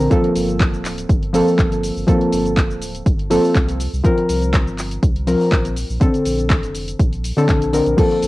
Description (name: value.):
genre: deep house.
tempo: 122 BPM.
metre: 4/4.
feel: swing 53% on 16ths.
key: unclear.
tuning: A4 = 440 Hz.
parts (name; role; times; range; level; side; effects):
deep mellow chord stab; stabs; 0.0-8.3 s; D3 to Bb4; -18 LUFS; equal; chorus, cassette tape, tape echo.
warm sub bass; bass; 0.0-8.3 s; D1 to C2; -24 LUFS; equal; sidechain pumping.
house drum kit; drums; 0.0-8.3 s; crash cymbal, handclaps, hi-hat, shaker; -27 LUFS; equal; cassette tape.
electronic kick drum; drums; 0.1-8.1 s; none; -16 LUFS; equal; overdrive, cassette tape.
room: light reverb.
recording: home recording on cassette.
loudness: -15 LUFS.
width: side -18 dB against mid.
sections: 0.0-8.3 A section.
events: none.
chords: 0.1 Gm11; 3.8 C7sus4; 5.8 Bbmaj9.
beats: | 0.11 0.60 1.09 1.59 | 2.08 2.57 3.06 3.55 | 4.04 4.54 5.03 5.52 | 6.01 6.50 7.00 7.49 | 7.98.